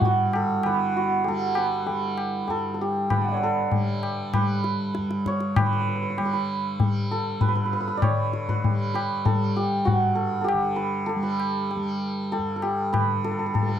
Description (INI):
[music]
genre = indian classical, Hindustani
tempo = 98 BPM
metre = 4/4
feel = straight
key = G raga yaman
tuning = A4 = 445 Hz
[part]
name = santur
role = melody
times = 0.0-13.8 s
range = E4 to C#6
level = -26 LUFS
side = right 3 dB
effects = tape echo
[part]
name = tanpura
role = drone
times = 0.0-13.8 s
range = G2 to G3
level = -29 LUFS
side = right 1 dB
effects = none
[part]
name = tabla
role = percussion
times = 0.0-13.8 s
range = none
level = -26 LUFS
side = left 3 dB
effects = none
[sound]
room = light reverb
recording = dry, close 1970s-style studio recording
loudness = -22 LUFS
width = side -9 dB against mid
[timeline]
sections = 0.0-13.8 A section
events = none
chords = none